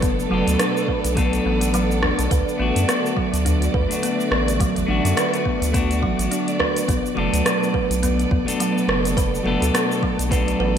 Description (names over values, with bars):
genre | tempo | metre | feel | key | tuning
organic downtempo | 105 BPM | 4/4 | swing 57% on 16ths | B minor pentatonic | A4 = 443 Hz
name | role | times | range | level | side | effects
clean electric guitar | accompaniment | 0.0-10.8 s | F#3 to A4 | -26 LUFS | left 3 dB | sidechain pumping, ping-pong delay
warm symphonic string section | sustained chords | 0.0-10.8 s | B2 to D5 | -27 LUFS | right 2 dB | sidechain pumping
kalimba | arpeggios | 0.0-10.8 s | F#3 to B4 | -23 LUFS | right 1 dB | low-pass filter, ping-pong delay
round analog bass | bass | 0.0-10.8 s | F#1 to F#2 | -23 LUFS | equal | sidechain pumping
electronic kick drum | drums | 0.0-10.4 s | none | -24 LUFS | equal | none
organic electronic drum kit | drums | 0.0-10.6 s | hi-hat, rim click, shaker | -25 LUFS | right 1 dB | overdrive, gated reverb
udu | percussion | 2.0-8.4 s | none | -29 LUFS | left 1 dB | none
room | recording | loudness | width
moderate plate reverb, RT60 2.5 s | bright 1980s-style digital production | -18 LUFS | side -8 dB against mid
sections
0.0-10.8 A section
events
filter sweep on kalimba 0.0-10.8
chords
0.0 Bm7; 2.3 D; 6.9 Bm7